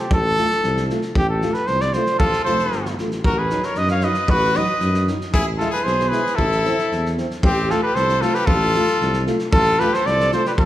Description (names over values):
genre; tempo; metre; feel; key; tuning
balkan folk, Balkan brass band; 115 BPM; 2/4; straight; unclear; A4 = 441 Hz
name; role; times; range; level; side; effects
warm cornet; melody; 0.0-10.7 s; G4 to F5; -20 LUFS; equal; none
mellow tuba; bass; 0.1-10.7 s; F1 to F#2; -24 LUFS; equal; none
loose indie drum kit; percussion; 0.1-10.7 s; kick drum, snare drum; -24 LUFS; equal; none
clear euphonium; accompaniment; 0.4-10.4 s; D#4 to F4; -30 LUFS; left 5 dB; none
warm euphonium; accompaniment; 0.4-10.4 s; F#3 to C4; -29 LUFS; right 2 dB; none
brilliant trumpet; second line; 2.2-10.7 s; C4 to C#5; -27 LUFS; left 3 dB; none
room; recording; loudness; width
wet recital hall reverb, RT60 1.6 s; recorded in a church or concert hall; -17 LUFS; side -13 dB against mid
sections
0.0-7.4 A section; 7.4-10.7 A section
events
none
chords
0.0 F/A; 3.2 B/A; 5.3 E/A; 6.4 Am; 7.4 F/A